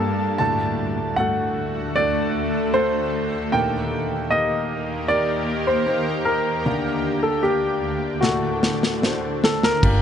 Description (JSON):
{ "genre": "pop ballad", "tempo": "77 BPM", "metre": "4/4", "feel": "straight", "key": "unclear", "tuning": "A4 = 442 Hz", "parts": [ { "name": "clear baby grand piano", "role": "melody", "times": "0.0-10.0 s", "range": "F#4 to A5", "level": "-23 LUFS", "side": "equal", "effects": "none" }, { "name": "clear concert grand piano", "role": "accompaniment", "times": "0.0-10.0 s", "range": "D2 to C5", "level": "-26 LUFS", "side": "left 1 dB", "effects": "none" }, { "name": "shimmering ambient pad", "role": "sustained chords", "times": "0.0-10.0 s", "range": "D2 to A5", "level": "-26 LUFS", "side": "equal", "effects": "chorus, built-in reverb" }, { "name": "modern studio drum kit", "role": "drums", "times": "8.2-10.0 s", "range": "crash cymbal, kick drum, snare drum", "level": "-21 LUFS", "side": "left 1 dB", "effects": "none" }, { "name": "vintage muted fingered electric bass", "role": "bass", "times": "9.8-10.0 s", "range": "G1", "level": "-18 LUFS", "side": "equal", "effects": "none" } ], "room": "light reverb, small room ambience", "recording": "nothing above 10.7 kHz", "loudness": "-19 LUFS", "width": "side -8 dB against mid", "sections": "0.0-9.8 A section", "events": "drum fill 8.2-9.8", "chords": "0.4 D; 3.5 Eb; 6.7 Gm/D; 8.2 D" }